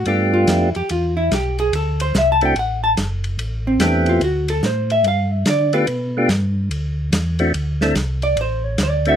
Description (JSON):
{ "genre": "soul jazz organ trio", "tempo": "144 BPM", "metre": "4/4", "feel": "swing 65% on 8ths", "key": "unclear", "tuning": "A4 = 441 Hz", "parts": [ { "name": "vintage hollow-body jazz guitar", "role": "accompaniment", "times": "0.0-9.2 s", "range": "C4 to A5", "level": "-19 LUFS", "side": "equal", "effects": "none" }, { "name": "mellow tonewheel organ", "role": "bass", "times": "0.0-9.2 s", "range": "F#1 to D3", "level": "-21 LUFS", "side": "equal", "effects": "chorus vibrato, slow rotary speaker" }, { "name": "percussive tonewheel organ", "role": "melody", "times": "0.1-9.2 s", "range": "A3 to A4", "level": "-18 LUFS", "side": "equal", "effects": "slow rotary speaker" }, { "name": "warm soul drum kit", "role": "drums", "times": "0.1-9.1 s", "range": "hi-hat, ride cymbal, snare drum", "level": "-24 LUFS", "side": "equal", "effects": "none" } ], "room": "light reverb", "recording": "close, detailed microphones", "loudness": "-16 LUFS", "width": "side -9 dB against mid", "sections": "0.0-9.2 A section", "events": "hollow-body jazz guitar solo 0.0-9.2", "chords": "0.1 G7; 1.7 D7; 3.4 Am7; 4.2 D5; 5.0 G7; 6.7 D7(no3)" }